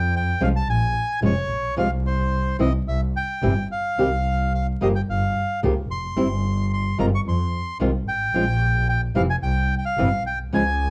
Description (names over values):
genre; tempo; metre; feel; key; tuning
tango; 110 BPM; 4/4; rubato; unclear; A4 = 440 Hz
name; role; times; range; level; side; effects
bandoneon; melody; 0.0-10.9 s; C5 to Db6; -28 LUFS; equal; none
rich double bass; bass; 0.0-10.9 s; F1 to F2; -25 LUFS; equal; none
flamenco guitar; accompaniment; 0.4-10.6 s; C3 to G4; -25 LUFS; equal; none
room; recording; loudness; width
light reverb; dark, warm production, vinyl crackle; -22 LUFS; mono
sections
0.0-10.9 A section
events
none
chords
0.0 F; 0.7 Bbm7; 1.8 F5/C; 2.9 C; 4.0 C5; 5.1 G7(b5, no3); 6.2 C5/G; 7.3 Fm; 8.3 Bb5; 9.4 C